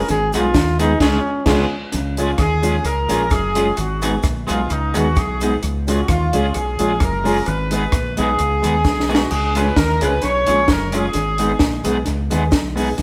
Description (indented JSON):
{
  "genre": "ska",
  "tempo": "130 BPM",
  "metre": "4/4",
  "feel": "swing 54% on 8ths",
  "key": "Db mixolydian",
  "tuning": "A4 = 444 Hz",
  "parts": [
    { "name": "brilliant trombone", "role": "melody", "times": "0.0-1.7 s", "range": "Cb4 to Bb4", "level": "-23 LUFS", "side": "equal", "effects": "none" },
    { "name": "fingered electric bass", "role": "bass", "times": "0.1-13.0 s", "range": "Gb1 to Eb2", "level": "-24 LUFS", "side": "equal", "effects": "none" },
    { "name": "compact cocktail drum kit", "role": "drums", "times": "0.1-13.0 s", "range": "crash cymbal, hi-hat, kick drum, rim click, snare drum", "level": "-23 LUFS", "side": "equal", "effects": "analog delay" },
    { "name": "cabasa", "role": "percussion", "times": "0.1-13.0 s", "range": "none", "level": "-43 LUFS", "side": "equal", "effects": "none" },
    { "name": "electric guitar at the edge of break-up", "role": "accompaniment", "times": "0.3-12.9 s", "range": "Ab3 to Ab4", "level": "-26 LUFS", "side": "equal", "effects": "harmonic tremolo" },
    { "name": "dark upright piano", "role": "stabs", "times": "0.3-12.9 s", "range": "Ab3 to Ab4", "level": "-28 LUFS", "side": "equal", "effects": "tube saturation" },
    { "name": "mellow horn section", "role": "melody", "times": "2.2-11.9 s", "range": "Eb4 to Db5", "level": "-24 LUFS", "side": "equal", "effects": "none" }
  ],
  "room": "moderate stone room reverb, RT60 1.3 s",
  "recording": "band playing live in one room",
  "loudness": "-18 LUFS",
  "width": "mono",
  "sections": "0.0-1.9 A section; 1.9-13.0 B section",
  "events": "trombone solo 0.0-1.9; band accent 1.0-1.9; drum fill 8.8-9.3",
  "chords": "0.1 Abm; 1.0 Db; 3.8 Abm; 5.6 Db; 7.5 Abm; 9.3 Db; 11.1 Abm"
}